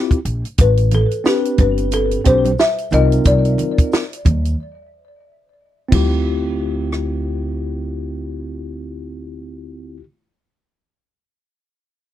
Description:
hip hop, jazz-hop; 90 BPM; 4/4; swing 60% on 16ths; D minor; A4 = 435 Hz
tine electric piano; accompaniment; 0.0-10.0 s; C4 to C5; -21 LUFS; left 2 dB; medium stereo tremolo
compact cocktail drum kit; drums; 0.1-7.1 s; crash cymbal, hi-hat, kick drum, rim click, snare drum; -16 LUFS; equal
upright bass; bass; 0.3-10.0 s; G1 to Eb2; -19 LUFS; equal
folk marimba with soft mallets; melody; 0.6-5.2 s; G4 to E5; -19 LUFS; left 2 dB; tape echo
tube shaker and congas; percussion; 0.6-6.2 s; -29 LUFS; right 6 dB
little or no reverb; dry, close 1970s-style studio recording; -15 LUFS; side -12 dB against mid
0.0-5.9 A section; 5.9-8.6 B section
break 4.6-5.9
0.0 Dm11 (rootless); 0.6 Am11; 2.9 Cm11; 5.9 Dm11
| 0.59 1.25 1.92 2.59 | 3.25 3.92 4.59 5.25 | 5.92 6.59 7.25 7.92

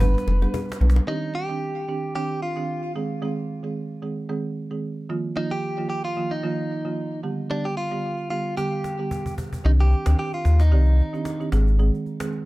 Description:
afrobeats; 112 BPM; 4/4; swing 55% on 16ths; C minor; A4 = 440 Hz
direct-recorded clean electric guitar; melody; 0.0-11.5 s; D4 to B4; -29 LUFS; equal; digital delay
folk marimba with medium mallets; accompaniment; 0.0-12.4 s; D3 to D5; -28 LUFS; right 3 dB
warm sub bass; bass; 0.0-1.0, 9.6-11.9 s; F1 to Eb2; -16 LUFS; equal
cajon; drums; 0.0-1.0, 8.6-12.4 s; -35 LUFS; equal
congas and bongos; percussion; 0.0-1.1 s; -32 LUFS; left 4 dB
little or no reverb; -22 LUFS; side -19 dB against mid
0.0-1.1 A section; 1.1-9.6 B section; 9.6-12.5 C section
drum fill 0.0-1.1, 8.6-9.6; kick muted 9.6-12.5
0.0 G; 1.1 Cmadd9; 2.9 Ab; 5.1 Bbsus4; 7.2 G; 9.6 Cmadd9; 11.5 Ab
0.00 0.54 | 1.07 1.61 2.15 2.68 | 3.22 3.75 4.29 4.82 | 5.36 5.89 6.43 6.97 | 7.50 8.04 8.57 9.11 | 9.64 10.18 10.72 11.25 | 11.79 12.32

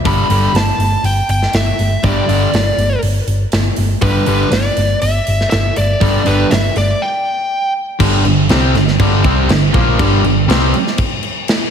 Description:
hard rock; 121 BPM; 4/4; straight; G major; A4 = 440 Hz
crunchy overdriven guitar; riff; 0.0-10.7 s; G2 to C4; -18 LUFS; left 10 dB; slapback echo
smooth overdriven lead guitar; melody; 0.1-7.7 s; B4 to B5; -18 LUFS; equal; slapback echo
heavy high-gain guitar; riff; 0.1-10.7 s; G2 to C4; -18 LUFS; right 12 dB; distortion
hollow-body short-scale picked electric bass; bass; 0.1-10.7 s; G1 to C2; -16 LUFS; equal
tight metal drum kit; drums; 0.1-11.6 s; crash cymbal, hi-hat, kick drum, snare drum; -18 LUFS; equal
moderate lush hall reverb, RT60 2.0 s; big arena sound; -12 LUFS; side -7 dB against mid
0.0-8.0 A section; 8.0-11.7 B section
break 7.0-8.0
0.0 G5
| 0.05 0.55 1.04 1.54 | 2.04 2.54 3.03 3.53 | 4.03 4.52 5.02 5.52 | 6.02 6.51 7.01 7.51 | 8.01 8.50 9.00 9.50 | 9.99 10.49 10.99 11.49

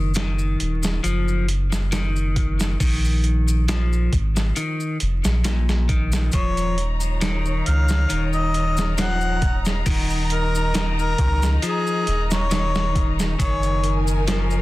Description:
trip hop; 68 BPM; 4/4; swing 54% on 16ths; Eb minor; A4 = 442 Hz
electric guitar at the edge of break-up; arpeggios; 0.0-14.6 s; Bb2 to F3; -27 LUFS; left 2 dB; vintage 12-bit sampler grit, ping-pong delay
soft dub sub bass; bass; 0.0-14.6 s; Eb1 to Db2; -21 LUFS; equal
maracas; percussion; 0.1-14.6 s; -36 LUFS; equal
boom bap sampler-style drum kit; drums; 0.2-14.5 s; hi-hat, kick drum, snare drum; -24 LUFS; equal; small room ambience
mellow harmonica; melody; 6.3-14.0 s; Ab4 to Gb5; -26 LUFS; left 1 dB; dub echo
muted symphonic violin section; sustained chords; 6.3-14.6 s; Eb4 to Bb5; -30 LUFS; left 1 dB
little or no reverb; dense, heavily limited modern master, vinyl crackle; -19 LUFS; side -18 dB against mid
0.0-14.6 A section
0.0 Ebmadd9; 2.8 Bb5; 6.3 Eb5; 13.4 Gb69
0.16 1.04 1.92 | 2.81 3.69 4.57 5.45 | 6.34 7.22 8.10 8.98 | 9.87 10.75 11.63 12.51 | 13.39 14.28

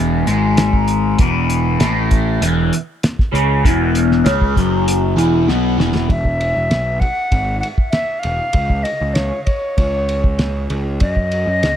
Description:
psychedelic rock; 98 BPM; 4/4; straight; E major; A4 = 440 Hz
crunchy overdriven guitar; riff; 0.0-6.1 s; E2 to C#4; -16 LUFS; left 1 dB; phaser
fuzz picked electric bass; bass; 0.0-11.8 s; E1 to F#2; -19 LUFS; equal; overdrive
cloth-damped thuddy drum kit; drums; 0.3-11.8 s; hi-hat, kick drum, ride cymbal, snare drum; -18 LUFS; equal
reedy silver concert flute; melody; 6.1-11.8 s; C#5 to F#5; -20 LUFS; equal; tape echo
small room ambience; -14 LUFS; side -10 dB against mid
0.0-6.1 A section; 6.1-11.8 B section
drum fill 5.5-6.1
0.0 E; 6.1 Esus2; 8.6 N.C.; 11.0 F#5
0.58 | 1.19 1.81 2.42 3.03 | 3.64 4.26 4.87 5.48 | 6.09 6.71 7.32 7.94 | 8.55 9.17 9.78 10.40 | 11.01 11.63

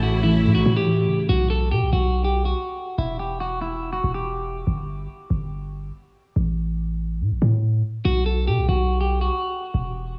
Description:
hip hop; 142 BPM; 4/4; half-time; A4 = 440 Hz
clean electric guitar; melody; 0.0-4.6, 8.1-9.7 s; E4 to A4; -28 LUFS; equal; phaser, diffuse ambient delay
muted felt-like synth keys; accompaniment; 0.0-1.3 s; A2 to E3; -25 LUFS; equal; chorus
warm symphonic string section; sustained chords; 0.0-1.3 s; C#3 to E4; -28 LUFS; equal
warm 808-style bass; bass; 0.0-10.2 s; E1 to B2; -25 LUFS; equal
moderate plate reverb, RT60 2.9 s; dreamy mix soaked in reverb, studio reverb; -23 LUFS; mono
0.0-1.3 A section; 1.3-10.2 B section
break 9.7-10.2
0.0 A; 1.3 B5; 3.0 Em; 4.7 N.C.; 8.1 B5
0.02 0.45 0.87 | 1.29 1.71 2.14 2.56 | 2.98 3.40 3.83 4.25 | 4.67 5.09 5.52 5.94 | 6.36 6.78 7.21 7.63 | 8.05 8.47 8.90 9.32 | 9.74 10.16

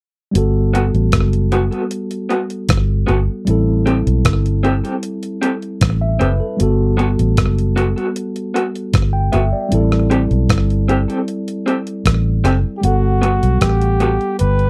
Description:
lovers rock reggae; 77 BPM; 4/4; straight; G major; A4 = 440 Hz
mellow tine electric piano; accompaniment; 0.3-14.7 s; G3 to G5; -23 LUFS; equal; slapback echo
vintage muted fingered electric bass; bass; 0.4-14.7 s; F#1 to B1; -18 LUFS; equal
crisp 8-bit digital drum machine; drums; 0.4-14.7 s; hi-hat, kick drum, rim click; -20 LUFS; equal; slapback echo
electric guitar through a small old amp; stabs; 0.7-14.1 s; B3 to A4; -20 LUFS; equal; tremolo
mellow flugelhorn; melody; 12.8-14.7 s; F#4 to B4; -22 LUFS; equal; tape echo
little or no reverb; dry, close 1970s-style studio recording; -17 LUFS; mono
0.4-12.8 A section; 12.8-14.7 B section
0.4 Gmaj9; 3.5 Am7; 6.6 Gmaj9; 9.7 Am7; 12.8 Gmaj9
| 0.35 1.13 1.91 2.69 | 3.47 4.25 5.03 5.81 | 6.59 7.37 8.15 8.93 | 9.71 10.50 11.28 12.06 | 12.84 13.62 14.40

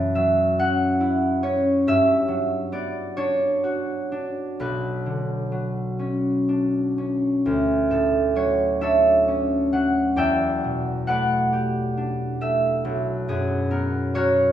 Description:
classical, solo harp piece; 40-48 BPM (dotted quarters); 6/8; rubato; B minor, D major from 7.5 s; A4 = 440 Hz
concert harp; solo; 0.0-14.5 s; B1 to A5; -20 LUFS; equal
wet recital hall reverb, RT60 1.5 s; heard from further back in the room; -20 LUFS; side -10 dB against mid
0.0-7.5 A section; 7.5-14.5 B section
0.0 F#m7; 1.8 Gmaj7; 4.6 Bmadd9; 7.5 Dmaj7; 10.2 Em11; 12.8 Bmaj7(no3)
0.58 | 1.85 3.16 | 4.58 6.00 | 7.46 8.82 | 10.17 11.50 | 12.84 14.15

